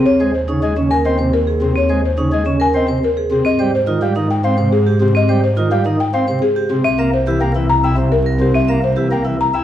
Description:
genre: classical, minimalist pattern music.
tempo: 106 BPM.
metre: 3/4.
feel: straight.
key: Eb mixolydian.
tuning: A4 = 441 Hz.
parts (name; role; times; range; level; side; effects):
buzzing marimba with soft mallets; melody; 0.0-9.6 s; G4 to Bb5; -19 LUFS; left 3 dB; none.
chamber organ, principal chorus; accompaniment; 0.0-9.6 s; C3 to E4; -20 LUFS; equal; none.
vibraphone with medium hard mallets; arpeggios; 0.0-9.4 s; C4 to E5; -20 LUFS; right 2 dB; none.
rich studio double bass section; bass; 0.1-9.6 s; C2 to Ab2; -18 LUFS; equal; none.
room: moderate large studio reverb, RT60 1.3 s.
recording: vinyl crackle.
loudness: -13 LUFS.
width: side -11 dB against mid.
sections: 0.1-9.6 A section.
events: none.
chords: 0.1 Eb7sus4; 3.5 Ab6; 6.9 C7.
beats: | 0.06 0.63 1.19 | 1.76 2.33 2.89 | 3.46 4.02 4.59 | 5.16 5.72 6.29 | 6.86 7.42 7.99 | 8.55 9.12.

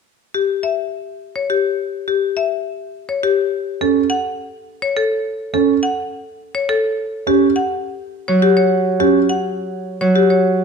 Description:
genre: classical, minimalist pattern music.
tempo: 104 BPM.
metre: 3/4.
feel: straight.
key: unclear.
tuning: A4 = 440 Hz.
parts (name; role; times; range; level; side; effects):
marimba with hard mallets; melody; 0.3-10.5 s; G4 to F#5; -18 LUFS; left 5 dB; none.
dark baby grand piano; arpeggios; 3.8-9.2 s; C#4; -17 LUFS; right 12 dB; none.
Celtic harp; accompaniment; 8.3-10.6 s; F#3; -17 LUFS; right 3 dB; none.
room: moderate recital hall reverb, RT60 1.4 s.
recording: dark, warm production.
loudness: -16 LUFS.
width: side -5 dB against mid.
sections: 0.2-10.6 A section.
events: none.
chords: 0.2 N.C.; 3.7 F#m (rootless); 7.1 F#5.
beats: | 0.20 0.78 1.35 | 1.93 2.51 3.09 | 3.66 4.24 4.82 | 5.39 5.97 6.55 | 7.12 7.70 8.28 | 8.86 9.43 10.01 | 10.59.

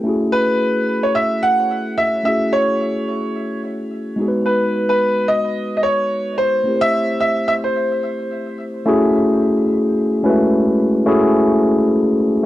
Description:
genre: amapiano.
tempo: 109 BPM.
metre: 4/4.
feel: swing 58% on 16ths.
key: F# dorian.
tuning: A4 = 442 Hz.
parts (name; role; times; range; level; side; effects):
mellow tine electric piano; accompaniment; 0.0-12.5 s; G#3 to C5; -17 LUFS; left 1 dB; cassette tape.
clear concert grand piano; melody; 0.3-8.5 s; B4 to F#5; -18 LUFS; equal; cassette tape, tape echo.
room: moderate studio reverb, RT60 0.6 s.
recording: home recording on cassette.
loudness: -15 LUFS.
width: side -15 dB against mid.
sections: 0.0-8.9 A section; 8.9-12.5 B section.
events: drop 8.9-12.5.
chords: 0.1 F#m9; 4.2 G#m7; 6.7 Am7; 8.9 F#m9.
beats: | 0.06 0.61 1.16 1.71 | 2.26 2.81 3.36 3.91 | 4.46 5.01 5.56 6.11 | 6.66 7.21 7.76 8.31 | 8.86 9.41 9.96 10.52 | 11.07 11.62 12.17.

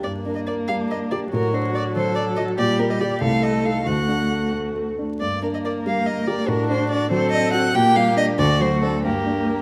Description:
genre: quick classical-period movement for piano quartet.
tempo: 93 BPM (dotted quarters).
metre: 6/8.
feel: rubato.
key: G minor.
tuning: A4 = 440 Hz.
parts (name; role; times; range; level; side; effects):
dark violin; melody; 0.0-9.6 s; G4 to G5; -26 LUFS; equal; none.
dark baby grand piano; accompaniment; 0.0-9.6 s; C2 to D5; -26 LUFS; equal; none.
rich viola; accompaniment; 0.0-9.6 s; F#3 to D4; -28 LUFS; equal; none.
rich cello; second line; 0.7-9.6 s; D4 to Bb4; -30 LUFS; equal; none.
room: moderate concert hall reverb, RT60 2.2 s.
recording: close, detailed microphones, vinyl crackle.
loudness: -21 LUFS.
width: mono.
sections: 0.0-9.6 A section.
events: none.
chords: 0.0 Gm; 1.3 D/A; 2.6 Gm/Bb; 3.2 Adim/C; 3.9 D; 5.2 Gm; 6.5 D7/A; 7.7 Gm/Bb; 8.4 D7; 9.0 Gm.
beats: | 0.03 0.69 | 1.33 1.96 | 2.59 3.23 | 3.88 4.54 | 5.21 5.86 | 6.49 7.12 | 7.74 8.39 | 9.04.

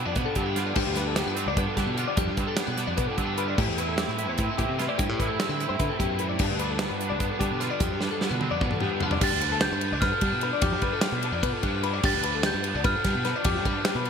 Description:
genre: math rock and midwest emo.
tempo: 298 BPM (eighths).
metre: 7/8.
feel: straight.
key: unclear.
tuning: A4 = 439 Hz.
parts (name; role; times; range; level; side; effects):
twangy electric guitar; accompaniment; 0.0-10.6 s; G2 to G4; -33 LUFS; right 9 dB; none.
clean electric guitar; arpeggios; 0.0-14.1 s; G4 to D5; -31 LUFS; left 10 dB; lush chorus.
raw garage guitar; riff; 0.0-14.1 s; G2 to G4; -31 LUFS; equal; overdrive, ensemble chorus.
modern bright fingered electric bass; bass; 0.0-14.1 s; D2 to G3; -31 LUFS; equal; none.
modern studio drum kit; drums; 0.2-14.1 s; crash cymbal, hi-hat, kick drum, ride cymbal, snare drum, toms; -29 LUFS; equal; gated reverb.
glockenspiel with soft plastic mallets; melody; 9.2-14.1 s; D6 to A6; -29 LUFS; right 2 dB; none.
room: light reverb, small room ambience.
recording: bright 1980s-style digital production.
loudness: -24 LUFS.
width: side -7 dB against mid.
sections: 0.0-9.2 A section; 9.2-14.1 B section.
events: drum fill 8.0-9.2.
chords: 0.0 G7; 3.6 Am7; 6.4 G7.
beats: 0.16 0.36 0.56 | 0.76 0.97 1.17 1.37 1.57 1.77 1.97 | 2.17 2.38 2.58 2.78 2.98 3.18 3.38 | 3.58 3.79 3.99 4.19 4.39 4.59 4.79 | 5.00 5.20 5.40 5.60 5.80 6.00 6.20 | 6.40 6.61 6.81 7.01 7.21 7.41 7.61 | 7.81 8.02 8.22 8.42 8.62 8.82 9.02 | 9.22 9.42 9.62 9.83 10.03 10.23 10.43 | 10.63 10.83 11.03 11.24 11.44 11.64 11.84 | 12.04 12.24 12.44 12.64 12.85 13.05 13.25 | 13.45 13.65 13.85 14.05.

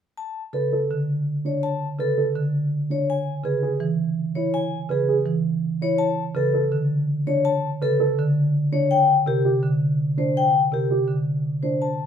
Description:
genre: classical, minimalist pattern music.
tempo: 165 BPM.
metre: 4/4.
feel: straight.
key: B dorian.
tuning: A4 = 439 Hz.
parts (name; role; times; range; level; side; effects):
vibraphone with medium hard mallets; melody; 0.2-12.0 s; G4 to A5; -23 LUFS; left 5 dB; none.
marimba with soft mallets; accompaniment; 0.5-11.3 s; C3 to E3; -23 LUFS; right 1 dB; none.
dark baby grand piano; arpeggios; 0.5-11.9 s; D4 to B4; -26 LUFS; right 7 dB; none.
room: moderate large studio reverb, RT60 1.1 s.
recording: none.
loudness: -20 LUFS.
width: side -8 dB against mid.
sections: 0.2-12.1 A section.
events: none.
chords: 0.2 Bm7; 3.1 C#m7; 6.0 D5; 8.9 A#6.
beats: | 0.17 0.54 0.90 1.26 | 1.63 1.99 2.35 2.72 | 3.08 3.45 3.81 4.17 | 4.54 4.90 5.26 5.63 | 5.99 6.36 6.72 7.08 | 7.45 7.81 8.17 8.54 | 8.90 9.27 9.63 9.99 | 10.36 10.72 11.08 11.45 | 11.81.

